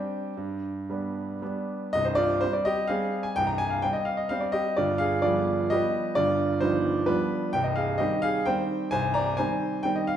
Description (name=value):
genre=classical, piano waltz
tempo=110-137 BPM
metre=3/4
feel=rubato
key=C minor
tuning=A4 = 439 Hz
part: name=clear grand piano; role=solo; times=0.0-10.2 s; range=C1 to Bb5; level=-24 LUFS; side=equal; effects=none
room=wet recital hall reverb, RT60 1.4 s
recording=none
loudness=-24 LUFS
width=side -9 dB against mid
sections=0.0-1.9 A section; 1.9-10.2 B section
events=none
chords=0.4 G; 1.9 C5; 4.8 G7; 7.5 Cm